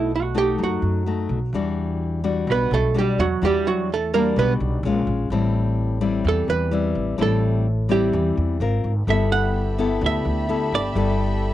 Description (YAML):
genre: bossa nova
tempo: 127 BPM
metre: 4/4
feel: straight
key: unclear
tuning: A4 = 439 Hz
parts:
  - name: archtop guitar, miked and amplified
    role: melody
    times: 0.0-11.2 s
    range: F#3 to F#5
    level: -23 LUFS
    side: right 6 dB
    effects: cassette tape
  - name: nylon-string guitar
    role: accompaniment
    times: 0.0-11.5 s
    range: A2 to Bb4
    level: -24 LUFS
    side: left 5 dB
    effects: cassette tape
  - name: upright bass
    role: bass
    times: 0.0-11.5 s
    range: G1 to F#2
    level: -23 LUFS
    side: equal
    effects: none
  - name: warm studio violin section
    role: sustained chords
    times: 9.1-11.5 s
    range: G4 to B5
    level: -30 LUFS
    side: equal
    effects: cassette tape
room: light reverb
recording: home recording on cassette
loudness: -19 LUFS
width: side -13 dB against mid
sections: 0.0-11.5 A section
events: hollow-body jazz guitar solo 0.0-11.5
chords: 0.0 B7; 1.5 Em9; 4.8 Bbm7; 5.3 Am7; 8.6 Ab69; 9.1 G69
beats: 0.12 0.59 1.06 | 1.53 2.00 2.48 2.95 | 3.42 3.89 4.36 4.83 | 5.31 5.78 6.25 6.72 | 7.19 7.66 8.14 8.61 | 9.08 9.55 10.02 10.49 | 10.96 11.44